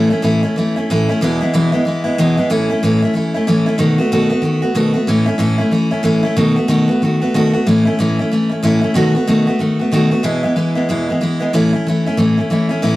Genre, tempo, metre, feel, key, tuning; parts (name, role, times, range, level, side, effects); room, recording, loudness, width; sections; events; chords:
rock; 186 BPM; 4/4; swing 60% on 8ths; A4 = 441 Hz
picked steel-string acoustic guitar; solo; 0.0-13.0 s; E2 to F#4; -13 LUFS; equal
wet booth ambience, RT60 0.3 s; rough rehearsal-room recording; -13 LUFS; side -17 dB against mid
0.0-10.2 A section; 10.2-13.0 B section
0.0 A; 1.2 E; 2.5 A; 3.8 B7; 5.1 A; 6.4 B7; 7.7 A; 9.0 B7; 10.2 E; 11.5 A